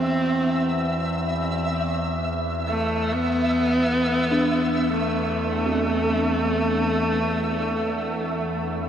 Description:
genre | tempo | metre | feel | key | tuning
dark ambient drone | free time | none | none | unclear | A4 = 442 Hz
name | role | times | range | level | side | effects
rich horsehead fiddle | melody | 0.0-8.9 s | A3 to C4 | -24 LUFS | equal | tape echo
dark detuned synth bell | arpeggios | 0.0-8.9 s | C4 to A4 | -29 LUFS | right 2 dB | chorus, phaser, tape echo
overtone-sweeping drone | drone | 0.0-8.9 s | E2 | -27 LUFS | left 1 dB | chorus, built-in reverb
flickering grainy texture | texture | 0.0-8.9 s | E5 | -29 LUFS | equal | built-in reverb
room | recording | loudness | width
wet huge ambient reverb, RT60 8.0 s | none | -21 LUFS | side -9 dB against mid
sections
0.0-8.9 A section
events
none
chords
0.0 Am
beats
free time

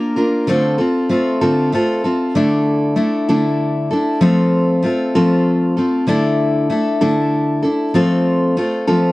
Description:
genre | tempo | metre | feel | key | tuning
rock | 64 BPM (dotted quarters) | 6/8 | straight | D minor | A4 = 441 Hz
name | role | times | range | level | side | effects
picked steel-string acoustic guitar | solo | 0.0-9.1 s | D3 to Bb4 | -14 LUFS | equal | none
room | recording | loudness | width
little or no reverb | dry, close 1970s-style studio recording | -14 LUFS | side -19 dB against mid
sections
0.0-2.3 A section; 2.3-9.1 B section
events
none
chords
0.5 Dm7; 2.3 Dsus2; 4.2 F; 6.1 Dsus2; 7.9 F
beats
| 0.48 1.41 | 2.34 3.27 | 4.21 5.14 | 6.08 7.01 | 7.95 8.88

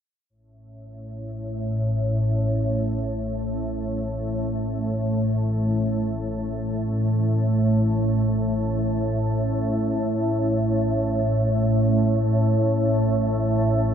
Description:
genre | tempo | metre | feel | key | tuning
ambient | free time | none | none | unclear | A4 = 441 Hz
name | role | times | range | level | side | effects
organ-like drone | solo | 1.0-13.9 s | A1 to A2 | -21 LUFS | equal | ensemble chorus, built-in reverb
room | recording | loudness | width
wet huge ambient reverb, RT60 7.9 s | dreamy mix soaked in reverb | -21 LUFS | side -8 dB against mid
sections
0.3-13.9 A section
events
none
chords
none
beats
free time

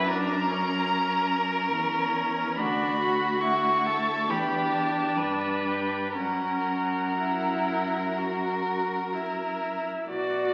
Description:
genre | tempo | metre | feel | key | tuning
classical, slow romantic movement for string quartet | 59-72 BPM | 4/4 | rubato | unclear | A4 = 440 Hz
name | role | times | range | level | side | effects
warm violin | melody | 0.0-10.5 s | D5 to C#6 | -34 LUFS | equal | none
rich violin | second line | 0.0-10.5 s | F#4 to D5 | -30 LUFS | equal | none
clear viola | accompaniment | 0.0-10.5 s | C#4 to F#4 | -33 LUFS | equal | none
warm cello | bass | 0.0-10.5 s | D2 to B2 | -35 LUFS | equal | none
room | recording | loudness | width
wet recital hall reverb, RT60 1.6 s | very old 78 rpm record, vinyl crackle | -27 LUFS | mono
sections
0.0-10.1 A section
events
none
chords
0.0 F#; 2.6 Bm/D; 4.3 Em7; 6.2 F#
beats
0.07 0.90 1.74 | 2.58 3.42 4.28 5.18 | 6.16 7.17 8.17 9.13 | 10.09

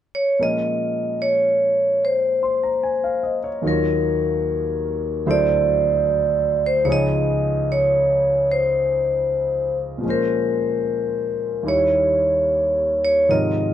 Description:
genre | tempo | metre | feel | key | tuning
jazz | 74 BPM | 4/4 | swing 67% on 8ths | Bb minor | A4 = 440 Hz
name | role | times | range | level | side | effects
vibraphone with medium hard mallets | melody | 0.1-13.7 s | Bb4 to Eb5 | -19 LUFS | equal | plate reverb
warm concert grand piano | accompaniment | 0.4-13.7 s | Db2 to C6 | -24 LUFS | equal | none
room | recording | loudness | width
moderate studio ambience, RT60 0.5 s | dark, warm production | -18 LUFS | side -10 dB against mid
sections
0.4-13.7 A section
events
none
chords
0.4 Bbm9; 3.6 Ebm9; 5.2 D9; 6.8 Dbmaj7; 10.0 Bbm7; 11.6 Eb7b9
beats
| 0.39 1.20 2.02 2.83 | 3.63 4.44 5.25 6.05 | 6.85 7.65 8.44 9.23 | 10.03 10.83 11.64 12.46 | 13.28

